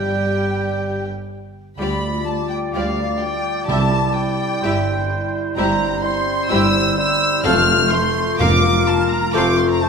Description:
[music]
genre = quick classical-period movement for symphony orchestra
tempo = 127 BPM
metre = 4/4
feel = straight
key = C major, F major from 5.6 s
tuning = A4 = 440 Hz
[part]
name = warm chamber violin section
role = melody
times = 0.0-9.9 s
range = F5 to F6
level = -23 LUFS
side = left 1 dB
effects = none
[part]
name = hollow concert flute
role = second line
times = 0.0-9.9 s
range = F5 to F6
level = -26 LUFS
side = left 3 dB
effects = none
[part]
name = warm chamber violin section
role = second line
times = 0.0-9.6 s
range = G4 to F5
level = -28 LUFS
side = left 3 dB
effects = none
[part]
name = warm clarinet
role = second line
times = 0.0-9.9 s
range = E4 to G4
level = -28 LUFS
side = left 4 dB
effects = none
[part]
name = warm oboe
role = second line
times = 0.0-9.9 s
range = Bb4 to G5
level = -27 LUFS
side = right 2 dB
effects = none
[part]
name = dark studio viola section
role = accompaniment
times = 0.0-9.6 s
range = G3 to F4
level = -25 LUFS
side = equal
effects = none
[part]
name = mellow bassoon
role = accompaniment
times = 0.0-9.9 s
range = G3 to Bb3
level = -26 LUFS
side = right 3 dB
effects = none
[part]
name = dark French horn section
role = sustained chords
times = 0.0-9.9 s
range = G3 to F4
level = -26 LUFS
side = left 4 dB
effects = none
[part]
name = dark chamber cello section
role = bass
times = 0.0-9.7 s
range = C2 to G2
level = -27 LUFS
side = right 2 dB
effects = none
[part]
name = rich symphonic double bass section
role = bass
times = 0.0-9.7 s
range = F1 to D2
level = -27 LUFS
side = right 4 dB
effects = none
[part]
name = timpani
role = percussion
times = 3.7-4.3, 7.4-9.1 s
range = F2 to C3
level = -23 LUFS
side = right 1 dB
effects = none
[sound]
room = wet scoring stage reverb, RT60 1.7 s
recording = minimal, uncompressed stereo recording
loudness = -16 LUFS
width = side -5 dB against mid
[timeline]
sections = 0.0-9.9 A section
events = none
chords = 0.0 N.C.; 1.8 G7/D; 3.7 C; 7.4 F; 8.4 Bb/F; 9.3 F

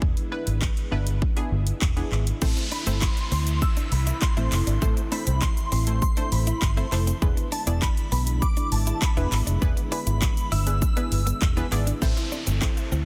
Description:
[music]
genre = dance-pop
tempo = 100 BPM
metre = 4/4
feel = straight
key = A harmonic minor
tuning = A4 = 440 Hz
[part]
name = punchy chord stab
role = accompaniment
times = 0.0-12.9 s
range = A3 to D5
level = -36 LUFS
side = equal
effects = chorus, sidechain pumping
[part]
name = ensemble organ-string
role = sustained chords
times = 0.0-13.1 s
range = C3 to E4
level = -39 LUFS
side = equal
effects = ensemble chorus, sidechain pumping
[part]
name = vintage muted fingered electric bass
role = bass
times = 0.0-13.1 s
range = E1 to D2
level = -27 LUFS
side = equal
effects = sidechain pumping
[part]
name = pop drum kit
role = drums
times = 0.0-13.1 s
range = crash cymbal, handclaps, hi-hat, kick drum, shaker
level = -28 LUFS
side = equal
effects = none
[part]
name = downlifter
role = sound effects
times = 2.4-7.2, 12.0-13.1 s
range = none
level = -39 LUFS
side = equal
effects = none
[part]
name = direct-recorded clean electric guitar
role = riff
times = 2.6-13.0 s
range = B3 to E4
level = -38 LUFS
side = equal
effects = subtle chorus
[part]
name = shimmering bell with halo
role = melody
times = 2.7-11.7 s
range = A5 to E6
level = -36 LUFS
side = equal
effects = ensemble chorus, dub echo
[part]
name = mallet-like synth pluck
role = arpeggios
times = 12.0-13.0 s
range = E3 to E5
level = -40 LUFS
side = equal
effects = chorus, phaser, sidechain pumping, dub echo
[sound]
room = little or no reverb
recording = dense, heavily limited modern master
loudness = -24 LUFS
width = mono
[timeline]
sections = 0.0-2.4 A section; 2.4-12.0 B section; 12.0-13.1 C section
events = none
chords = 0.0 E7; 2.4 Am; 7.2 E7; 12.0 Am

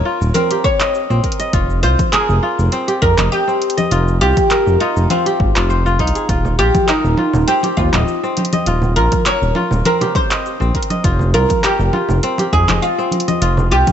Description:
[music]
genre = organic downtempo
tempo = 101 BPM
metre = 4/4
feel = swing 54% on 16ths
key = F minor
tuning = A4 = 440 Hz
[part]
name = oud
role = melody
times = 0.0-13.9 s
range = Eb4 to Db5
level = -18 LUFS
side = equal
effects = digital delay
[part]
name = kora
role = arpeggios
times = 0.0-13.9 s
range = C4 to Eb5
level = -21 LUFS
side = equal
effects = tape echo
[part]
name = smooth gliding synth bass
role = bass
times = 0.2-13.8 s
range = Eb1 to F2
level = -16 LUFS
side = equal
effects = sidechain pumping
[part]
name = deep house drum kit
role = drums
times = 0.2-13.9 s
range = congas, handclaps, hi-hat, shaker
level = -21 LUFS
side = left 2 dB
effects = overdrive, studio reverb
[part]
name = electronic kick drum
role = drums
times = 0.6-13.9 s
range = none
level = -19 LUFS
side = equal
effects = overdrive, studio reverb
[part]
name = congas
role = percussion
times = 6.4-13.9 s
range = none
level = -23 LUFS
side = right 3 dB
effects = none
[sound]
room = light reverb, small room ambience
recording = nothing above 8.0 kHz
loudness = -13 LUFS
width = side -9 dB against mid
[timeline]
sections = 0.0-13.9 A section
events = none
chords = 0.0 Eb7; 1.5 F9sus4; 6.3 Eb; 11.0 F9sus4

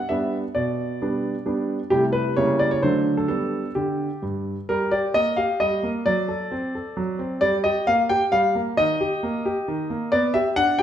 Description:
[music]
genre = classical-period piano sonatina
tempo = 132 BPM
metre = 3/4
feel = straight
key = G major, G minor from 4.7 s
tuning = A4 = 440 Hz
[part]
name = warm concert grand piano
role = solo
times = 0.0-10.8 s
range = G2 to G5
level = -20 LUFS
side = equal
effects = none
[sound]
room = moderate recital hall reverb, RT60 1.3 s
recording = minimal, uncompressed stereo recording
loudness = -20 LUFS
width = side -10 dB against mid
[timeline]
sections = 0.0-4.7 A section; 4.7-10.8 B section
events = none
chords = 0.0 G; 0.6 G/B; 1.9 Am7/C; 2.4 C#dim7; 2.8 D7; 3.3 G; 4.7 Gm; 6.1 D7/F#; 7.4 Gm; 8.8 Eb; 10.1 G/B

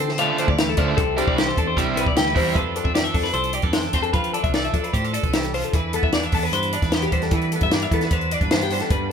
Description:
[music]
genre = math rock and midwest emo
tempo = 151 BPM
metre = 4/4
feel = straight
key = C major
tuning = A4 = 437 Hz
[part]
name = twelve-string electric guitar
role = accompaniment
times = 0.0-9.1 s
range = G2 to B4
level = -26 LUFS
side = right 6 dB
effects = none
[part]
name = twelve-string electric guitar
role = arpeggios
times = 0.0-9.1 s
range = G4 to G5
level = -25 LUFS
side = left 6 dB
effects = none
[part]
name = picked electric bass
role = bass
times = 0.0-9.1 s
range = C2 to F3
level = -27 LUFS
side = right 1 dB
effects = none
[part]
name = compact cocktail drum kit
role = drums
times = 0.1-9.0 s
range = hi-hat, kick drum, snare drum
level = -23 LUFS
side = equal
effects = none
[part]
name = overdriven electric guitar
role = riff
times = 0.2-2.6 s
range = C3 to E4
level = -25 LUFS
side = right 2 dB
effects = none
[sound]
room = light reverb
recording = band playing live in one room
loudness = -18 LUFS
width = side -7 dB against mid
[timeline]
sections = 0.0-2.6 A section; 2.6-9.1 B section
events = none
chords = 0.0 Dm9; 1.0 C69; 2.6 F6; 5.7 Cmaj9/E

